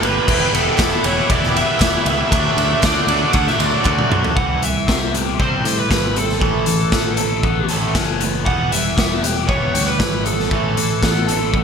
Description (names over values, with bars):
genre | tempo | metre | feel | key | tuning
indie rock | 117 BPM | 4/4 | straight | unclear | A4 = 440 Hz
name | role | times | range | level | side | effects
bluesy overdriven lead guitar | melody | 0.0-11.6 s | A4 to F#5 | -22 LUFS | right 4 dB | distortion, ping-pong delay
overdriven combo organ | sustained chords | 0.0-4.3 s | Bb3 to E6 | -29 LUFS | right 3 dB | none
biting overdriven guitar | riff | 0.0-11.6 s | G2 to E4 | -24 LUFS | right 6 dB | analog chorus, ping-pong delay
overdriven electric guitar | riff | 0.0-11.6 s | E3 to A4 | -23 LUFS | left 12 dB | phaser
picked electric bass | bass | 0.0-11.6 s | E1 to A2 | -23 LUFS | equal | none
raw garage drum kit | drums | 0.0-11.6 s | crash cymbal, hi-hat, kick drum, ride cymbal, snare drum, toms | -19 LUFS | equal | gated reverb
brilliant trumpet | second line | 0.3-4.4 s | D4 to F#4 | -28 LUFS | left 5 dB | none
group handclap | percussion | 0.8-4.0 s | none | -31 LUFS | right 11 dB | none
room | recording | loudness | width
light reverb, small room ambience | bright 1980s-style digital production | -15 LUFS | side -6 dB against mid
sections
0.0-4.4 A section; 4.4-11.6 B section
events
drum fill 3.9-4.4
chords
0.3 Emadd9; 2.3 D; 4.4 C; 6.4 Aadd9; 8.5 Em; 10.5 Asus2